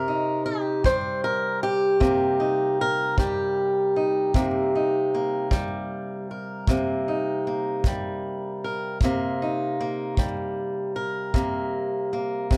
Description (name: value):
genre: acoustic country blues, solo or duo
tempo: 51 BPM (dotted quarters)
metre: 12/8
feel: straight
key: C minor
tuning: A4 = 441 Hz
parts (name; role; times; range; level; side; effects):
- fingerpicked swing-style acoustic guitar; melody; 0.0-12.6 s; C3 to C5; -26 LUFS; equal; none
- kick drum; drums; 0.8-12.6 s; none; -27 LUFS; equal; none
room: moderate small room reverb, RT60 0.5 s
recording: none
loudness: -25 LUFS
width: mono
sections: 0.0-12.6 A section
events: none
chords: 0.0 Cm7